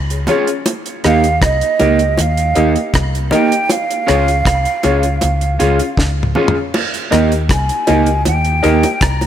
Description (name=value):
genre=roots reggae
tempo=79 BPM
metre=4/4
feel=straight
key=Eb mixolydian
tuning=A4 = 442 Hz
part: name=vintage muted fingered electric bass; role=bass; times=0.0-9.3 s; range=C2 to Eb2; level=-17 LUFS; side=left 1 dB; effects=none
part: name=warm grand piano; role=stabs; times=0.1-8.8 s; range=Db4 to Eb5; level=-19 LUFS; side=left 5 dB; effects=none
part: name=deep reggae drum kit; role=drums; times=0.1-9.3 s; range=crash cymbal, hi-hat, kick drum, rim click, snare drum, toms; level=-19 LUFS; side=equal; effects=none
part: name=electric guitar at the edge of break-up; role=accompaniment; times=0.3-8.8 s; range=Bb3 to Ab4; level=-20 LUFS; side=right 7 dB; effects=tape echo
part: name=bongos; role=percussion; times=0.3-9.3 s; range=none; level=-21 LUFS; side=equal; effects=none
part: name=breathy mellow jazz flute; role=melody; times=1.1-9.3 s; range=Eb5 to Bb5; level=-18 LUFS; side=right 3 dB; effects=tape echo
room=light reverb, studio ambience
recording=none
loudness=-12 LUFS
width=side -10 dB against mid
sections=0.0-6.7 A section; 6.7-9.3 B section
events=drum fill 6.0-6.7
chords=0.0 Db; 0.7 Eb; 3.7 Db; 6.7 Eb